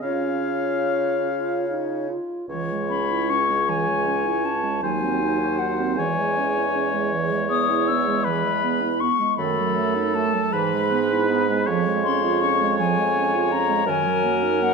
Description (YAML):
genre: classical, slow romantic movement for wind quintet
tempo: 48-55 BPM (dotted quarters)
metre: 6/8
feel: rubato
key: C# minor, Db major from 11.7 s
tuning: A4 = 440 Hz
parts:
  - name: concert flute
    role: melody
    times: 0.0-14.7 s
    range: Db5 to E6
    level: -24 LUFS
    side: left 8 dB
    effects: none
  - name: warm oboe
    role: second line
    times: 0.0-14.7 s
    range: A4 to F5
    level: -27 LUFS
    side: left 3 dB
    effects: none
  - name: dark clarinet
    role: accompaniment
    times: 0.0-14.7 s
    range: Eb3 to Gb4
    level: -26 LUFS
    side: right 9 dB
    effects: none
  - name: warm French horn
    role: accompaniment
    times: 0.0-14.7 s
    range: Gb3 to F4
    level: -29 LUFS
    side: right 3 dB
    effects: none
  - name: warm bassoon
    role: bass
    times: 0.0-14.7 s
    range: C#2 to Db3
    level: -27 LUFS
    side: right 3 dB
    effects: none
room: wet recital hall reverb, RT60 1.3 s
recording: none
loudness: -20 LUFS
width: side -4 dB against mid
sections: 0.0-2.5 A section; 2.5-14.7 B section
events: none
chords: 0.0 Db; 2.5 C#m; 4.8 Cdim/Eb; 6.0 C#m/E; 7.1 E; 9.4 D#dim/F#; 10.5 E/G#; 11.7 Db/F; 13.9 Ebm/Gb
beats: | 0.03 1.28 | 2.51 3.68 | 4.83 5.98 | 7.12 8.25 | 9.38 10.52 | 11.65 12.78 | 13.87